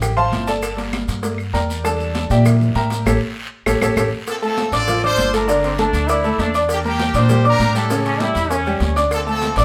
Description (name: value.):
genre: latin, salsa.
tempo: 198 BPM.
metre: 4/4.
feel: straight.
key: D minor.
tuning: A4 = 438 Hz.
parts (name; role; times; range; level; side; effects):
clear upright piano; accompaniment; 0.0-9.6 s; C#3 to D6; -22 LUFS; equal; none.
upright bass; bass; 0.0-9.6 s; G1 to Bb2; -22 LUFS; equal; none.
claves; percussion; 0.0-4.0, 9.1-9.3 s; none; -31 LUFS; equal; none.
congas; percussion; 0.0-9.6 s; none; -30 LUFS; equal; none.
cowbell; percussion; 0.0-9.6 s; none; -32 LUFS; equal; none.
guiro; percussion; 0.0-9.6 s; none; -36 LUFS; equal; none.
maracas; percussion; 0.0-9.6 s; none; -39 LUFS; equal; none.
bright trumpet section; melody; 4.3-9.6 s; Bb3 to D5; -24 LUFS; equal; none.
brilliant trombone section; second line; 5.6-9.0 s; C4 to E4; -25 LUFS; equal; none.
room: moderate studio reverb, RT60 0.8 s.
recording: none.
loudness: -18 LUFS.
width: mono.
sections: 0.0-4.3 A section; 4.3-9.6 B section.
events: upright piano solo 0.0-4.3; band accent 3.1-4.3; drum fill 3.5-4.3.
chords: 0.0 Dm7; 0.6 Gmadd9; 1.8 Em7b5; 3.1 A7; 4.3 Dm7; 5.5 Gmadd9; 6.7 Em7b5; 7.9 A7; 9.1 Dm7.